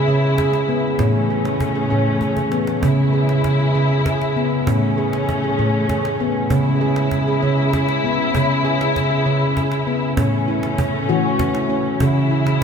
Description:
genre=world meditative, meditative tuned percussion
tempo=65 BPM (dotted quarters)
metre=6/8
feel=straight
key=C# minor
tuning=A4 = 439 Hz
part: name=muted symphonic string section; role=sustained chords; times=0.0-12.6 s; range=C#3 to E4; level=-22 LUFS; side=left 2 dB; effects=none
part: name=handpan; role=arpeggios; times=0.0-12.6 s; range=A2 to G#4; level=-18 LUFS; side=equal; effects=none
part: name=cajon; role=percussion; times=0.1-12.6 s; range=none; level=-28 LUFS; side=right 1 dB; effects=none
room=wet cathedral reverb, RT60 6.2 s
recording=dreamy mix soaked in reverb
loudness=-16 LUFS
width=side -6 dB against mid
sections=0.0-10.2 A section; 10.2-12.6 B section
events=drum fill 2.2-2.8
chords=0.0 C#m; 1.0 A; 2.8 C#m; 4.7 A; 6.5 C#m; 10.2 A; 12.0 C#m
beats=0.08 | 1.00 1.91 | 2.83 3.75 | 4.67 5.58 | 6.50 7.42 | 8.34 9.26 | 10.18 11.09 | 12.01

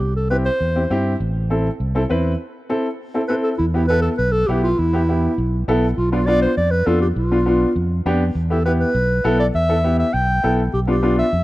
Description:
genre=latin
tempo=202 BPM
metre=4/4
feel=straight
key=unclear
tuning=A4 = 440 Hz
part: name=dark clarinet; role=melody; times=0.0-1.0, 3.3-11.4 s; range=E4 to G5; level=-21 LUFS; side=equal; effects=none
part: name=fingered electric bass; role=bass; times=0.0-11.4 s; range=A1 to G2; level=-20 LUFS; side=equal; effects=none
part: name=warm upright piano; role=accompaniment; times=0.3-11.2 s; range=B3 to B4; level=-21 LUFS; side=left 1 dB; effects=none
room=studio reverb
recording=rough home demo mix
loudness=-16 LUFS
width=side -17 dB against mid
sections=0.0-3.6 A section; 3.6-11.4 B section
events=break 2.4-3.6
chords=0.0 C; 1.2 Am; 3.6 Em; 6.0 Bdim; 8.4 Em; 10.7 Bdim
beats=| 0.01 0.31 0.61 0.91 | 1.21 1.50 1.80 2.10 | 2.40 2.70 3.00 3.30 | 3.60 3.89 4.19 4.49 | 4.79 5.08 5.38 5.68 | 5.98 6.28 6.57 6.87 | 7.17 7.46 7.76 8.06 | 8.36 8.65 8.95 9.25 | 9.54 9.84 10.14 10.44 | 10.73 11.03 11.33

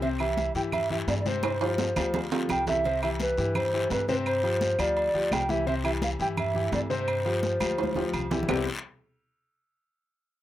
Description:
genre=latin, salsa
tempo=170 BPM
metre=4/4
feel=straight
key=C major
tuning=A4 = 441 Hz
part: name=mellow hollow tenor recorder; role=melody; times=0.0-8.1 s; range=B4 to G5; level=-28 LUFS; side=right 1 dB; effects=none
part: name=clear concert grand piano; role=accompaniment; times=0.0-8.7 s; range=C3 to C5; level=-31 LUFS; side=left 3 dB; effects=none
part: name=upright bass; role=bass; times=0.0-8.7 s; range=C2 to G2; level=-33 LUFS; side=equal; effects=none
part: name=agogo bells and timbales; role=percussion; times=0.0-8.6 s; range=none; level=-34 LUFS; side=right 6 dB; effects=none
part: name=congas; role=percussion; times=0.0-8.6 s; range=none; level=-36 LUFS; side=left 1 dB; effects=none
part: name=guiro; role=percussion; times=0.0-8.6 s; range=none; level=-39 LUFS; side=left 4 dB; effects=none
part: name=claves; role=percussion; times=0.2-8.6 s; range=none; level=-38 LUFS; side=right 2 dB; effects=none
room=light reverb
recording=rough home demo mix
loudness=-25 LUFS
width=side -13 dB against mid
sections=0.0-2.8 A section; 2.8-8.5 B section; 8.5-9.9 C section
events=drum fill 1.4-2.8, 7.6-8.5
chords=0.0 C; 1.4 G7sus4; 2.8 Cmaj7; 4.3 G7sus4; 5.7 C; 7.1 G7sus4; 8.5 Cmaj7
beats=| 0.02 0.37 0.73 1.08 | 1.43 1.79 2.14 2.50 | 2.85 3.20 3.55 3.91 | 4.26 4.61 4.96 5.32 | 5.67 6.02 6.37 6.73 | 7.08 7.43 7.78 8.13 | 8.49

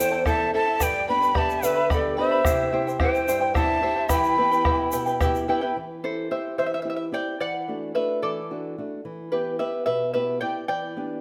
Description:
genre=andean folk, Andean ensemble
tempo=73 BPM (dotted quarters)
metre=6/8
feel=straight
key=unclear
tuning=A4 = 440 Hz
part: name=breathy mellow quena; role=melody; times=0.0-5.2 s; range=D5 to B5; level=-26 LUFS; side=equal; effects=none
part: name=breathy polished pan flute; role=second line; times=0.0-5.2 s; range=A4 to G5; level=-30 LUFS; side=equal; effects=none
part: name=charango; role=accompaniment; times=0.0-11.2 s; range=E4 to B5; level=-29 LUFS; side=equal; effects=none
part: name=nylon-string guitar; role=accompaniment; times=0.0-11.2 s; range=E2 to A4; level=-33 LUFS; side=equal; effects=none
part: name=tube shaker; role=percussion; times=0.0-5.4 s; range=none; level=-38 LUFS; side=equal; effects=none
part: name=bombo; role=percussion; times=0.3-5.7 s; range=none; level=-29 LUFS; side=equal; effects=none
room=moderate recital hall reverb, RT60 1.3 s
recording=close, detailed microphones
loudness=-24 LUFS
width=mono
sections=0.0-5.8 A section; 5.8-11.2 B section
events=charango solo 5.8-11.2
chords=0.0 Am; 0.8 G; 2.5 C; 4.1 Em; 5.8 C/E; 7.4 D/E; 9.0 Em; 10.7 G/E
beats=| 0.81 1.63 | 2.46 3.28 | 4.10 4.93 | 5.75 6.57 | 7.40 8.22 | 9.04 9.86 | 10.68

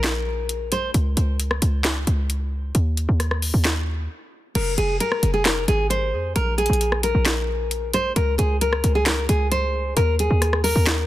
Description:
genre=hip hop, trap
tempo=133 BPM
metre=4/4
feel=half-time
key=F minor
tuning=A4 = 440 Hz
part: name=nylon-string guitar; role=melody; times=0.0-0.9, 4.6-11.1 s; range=Ab4 to C5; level=-23 LUFS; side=equal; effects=tape echo
part: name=short 808-style bass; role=bass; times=0.0-11.1 s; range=F1 to F2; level=-22 LUFS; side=equal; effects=none
part: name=trap drum kit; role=drums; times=0.0-11.0 s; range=crash cymbal, handclaps, hi-hat, rim click, snare drum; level=-24 LUFS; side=equal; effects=none
room=digital ambience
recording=dense, heavily limited modern master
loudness=-19 LUFS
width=side -15 dB against mid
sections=0.0-4.6 A section; 4.6-11.1 B section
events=break 4.1-4.6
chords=0.0 N.C.; 4.6 Fm; 6.4 Absus2/Bb; 8.2 Bbm9/Db; 10.0 Ebsus4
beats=0.04 0.49 | 0.94 1.40 1.85 2.30 | 2.75 3.20 3.65 4.10 | 4.55 5.00 5.46 5.91 | 6.36 6.81 7.26 7.71 | 8.16 8.61 9.06 9.52 | 9.97 10.42 10.87

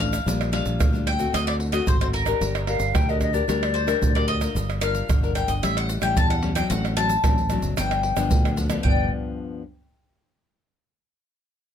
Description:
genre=samba and choro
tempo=112 BPM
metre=4/4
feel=straight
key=G minor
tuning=A4 = 440 Hz
part: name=bowl-back mandolin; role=melody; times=0.0-9.1 s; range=Bb4 to A5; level=-27 LUFS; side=left 2 dB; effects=none
part: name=nylon-string guitar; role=accompaniment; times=0.0-9.6 s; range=G2 to Bb4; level=-28 LUFS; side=left 7 dB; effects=none
part: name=fingered electric bass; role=bass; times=0.0-9.1 s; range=F#1 to E2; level=-26 LUFS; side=equal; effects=none
part: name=pandeiro, egg shaker, tamborim and surdo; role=percussion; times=0.0-9.0 s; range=none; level=-24 LUFS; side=right 1 dB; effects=none
part: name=wooden flute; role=second line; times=2.7-4.4, 8.8-9.1 s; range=D5 to G5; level=-27 LUFS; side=left 2 dB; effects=none
room=little or no reverb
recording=close, detailed microphones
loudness=-20 LUFS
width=side -9 dB against mid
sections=0.0-4.6 A section; 4.6-8.8 B section; 8.8-11.0 C section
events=none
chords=0.3 Gm7/Bb; 1.3 D7; 2.4 Gm7; 5.6 A7; 6.7 D7/A; 7.8 G7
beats=| 0.27 0.80 1.34 1.88 | 2.41 2.95 3.48 4.02 | 4.56 5.09 5.63 6.17 | 6.70 7.24 7.77 8.31 | 8.84 9.38

